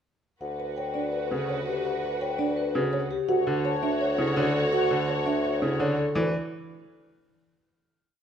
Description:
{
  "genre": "classical, minimalist pattern music",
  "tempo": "167 BPM",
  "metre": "4/4",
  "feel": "straight",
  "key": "D major",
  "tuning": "A4 = 440 Hz",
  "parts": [
    { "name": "vibraphone with soft mallets", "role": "melody", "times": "0.4-6.3 s", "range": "G4 to A5", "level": "-30 LUFS", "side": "left 6 dB", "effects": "none" },
    { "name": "warm studio string section", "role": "sustained chords", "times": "0.4-5.9 s", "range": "F#4 to C#5", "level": "-34 LUFS", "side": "equal", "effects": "none" },
    { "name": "warm bassoon", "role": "bass", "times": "0.4-6.3 s", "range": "D2", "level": "-31 LUFS", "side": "equal", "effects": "none" },
    { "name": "folk marimba with soft mallets", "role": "arpeggios", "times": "0.6-6.3 s", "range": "D4 to C#5", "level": "-30 LUFS", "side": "right 6 dB", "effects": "none" },
    { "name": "bright concert grand piano", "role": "accompaniment", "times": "1.3-6.3 s", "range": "C#3 to E3", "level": "-30 LUFS", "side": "equal", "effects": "none" }
  ],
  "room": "moderate scoring stage reverb, RT60 1.7 s",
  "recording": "close, detailed microphones",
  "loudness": "-24 LUFS",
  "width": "side -8 dB against mid",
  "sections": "0.4-6.2 A section; 6.2-7.6 final chord",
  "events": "none",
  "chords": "0.4 Gmaj7/D; 3.3 Dmaj7; 6.2 Dsus2"
}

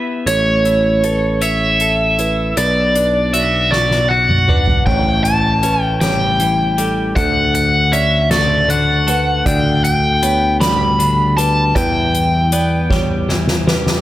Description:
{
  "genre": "post-rock",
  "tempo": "52 BPM (dotted quarters)",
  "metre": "6/8",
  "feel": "straight",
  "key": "unclear",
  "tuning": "A4 = 440 Hz",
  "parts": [
    { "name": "twelve-string electric guitar", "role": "arpeggios", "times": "0.0-14.0 s", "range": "A2 to C#5", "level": "-21 LUFS", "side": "left 2 dB", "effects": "analog delay" },
    { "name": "biting overdriven guitar", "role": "melody", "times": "0.3-13.3 s", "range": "C#5 to B5", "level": "-16 LUFS", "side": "equal", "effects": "spring reverb, analog delay" },
    { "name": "felt-muted upright piano", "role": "arpeggios", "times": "0.3-14.0 s", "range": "A4 to C#6", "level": "-26 LUFS", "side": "right 4 dB", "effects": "analog delay" },
    { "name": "modern bright picked electric bass", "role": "bass", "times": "0.3-14.0 s", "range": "A1 to E2", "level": "-19 LUFS", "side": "equal", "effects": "none" },
    { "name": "soft-mallet drum kit", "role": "drums", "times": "0.3-14.0 s", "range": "crash cymbal, hi-hat, kick drum, snare drum, toms", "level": "-20 LUFS", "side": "equal", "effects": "none" }
  ],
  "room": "light reverb",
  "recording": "none",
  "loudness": "-12 LUFS",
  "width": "side -14 dB against mid",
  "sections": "0.0-4.9 A section; 4.9-14.0 B section",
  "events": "drum fill 3.7-4.9, 12.9-14.0",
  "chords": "0.3 Aadd9; 2.6 Bmadd9; 4.9 A7; 7.2 Dmaj7; 9.5 G/D; 11.8 Em"
}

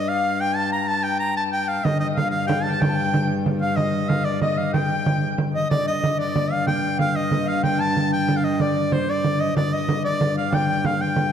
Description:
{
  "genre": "medieval dance",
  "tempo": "124 BPM (dotted quarters)",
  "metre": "6/8",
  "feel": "straight",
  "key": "unclear",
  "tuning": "A4 = 441 Hz",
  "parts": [
    { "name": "edgy shawm", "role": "melody", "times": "0.0-11.3 s", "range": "C5 to Bb5", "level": "-25 LUFS", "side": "right 1 dB", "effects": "none" },
    { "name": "bright reedy tenor recorder", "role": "second line", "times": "0.0-11.3 s", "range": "C5 to Bb5", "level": "-26 LUFS", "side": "left 4 dB", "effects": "none" },
    { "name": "warm viola da gamba", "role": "drone", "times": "0.0-11.3 s", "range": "G2", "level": "-26 LUFS", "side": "equal", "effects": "none" },
    { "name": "frame drum", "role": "percussion", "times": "1.9-11.3 s", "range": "none", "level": "-23 LUFS", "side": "right 2 dB", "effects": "none" }
  ],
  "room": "wet concert hall reverb, RT60 2.0 s",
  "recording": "dark, warm production",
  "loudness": "-19 LUFS",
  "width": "side -8 dB against mid",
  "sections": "0.0-5.7 A section; 5.7-11.3 B section",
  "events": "none",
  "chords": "none"
}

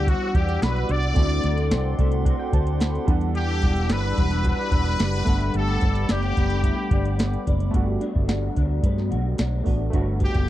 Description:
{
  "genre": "indie pop, bedroom pop",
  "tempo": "110 BPM",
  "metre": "4/4",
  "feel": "straight",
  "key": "G major",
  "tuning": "A4 = 440 Hz",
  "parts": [
    { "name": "brilliant trumpet", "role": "melody", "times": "0.0-10.5 s", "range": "F#4 to D5", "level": "-28 LUFS", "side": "left 2 dB", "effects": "ensemble chorus, slapback echo" },
    { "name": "electric guitar through a small old amp", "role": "accompaniment", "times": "0.0-10.5 s", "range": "D3 to B4", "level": "-30 LUFS", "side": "left 5 dB", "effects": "ensemble chorus, warbly pitch drift" },
    { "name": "warm analog keys", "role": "accompaniment", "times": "0.0-10.5 s", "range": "G3 to B5", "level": "-31 LUFS", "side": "right 3 dB", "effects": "chorus, cassette tape" },
    { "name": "hollow soft pad", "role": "sustained chords", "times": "0.0-7.7 s", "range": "G3 to E6", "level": "-33 LUFS", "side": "equal", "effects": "chorus" },
    { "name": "vintage muted fingered electric bass", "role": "bass", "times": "0.0-10.5 s", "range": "E1 to G2", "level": "-24 LUFS", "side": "equal", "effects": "none" },
    { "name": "soft vintage rhythm box", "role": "drums", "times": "0.1-10.5 s", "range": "hi-hat, kick drum, snare drum", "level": "-23 LUFS", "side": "equal", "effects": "overdrive" }
  ],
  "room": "digital ambience",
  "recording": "dry, close 1970s-style studio recording",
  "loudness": "-20 LUFS",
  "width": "side -14 dB against mid",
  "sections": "0.0-7.7 A section; 7.7-9.9 B section",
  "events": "synth keys fill 1.7-3.4",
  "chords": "0.0 Em9; 1.2 D7; 3.1 Em9; 5.3 Gmaj7"
}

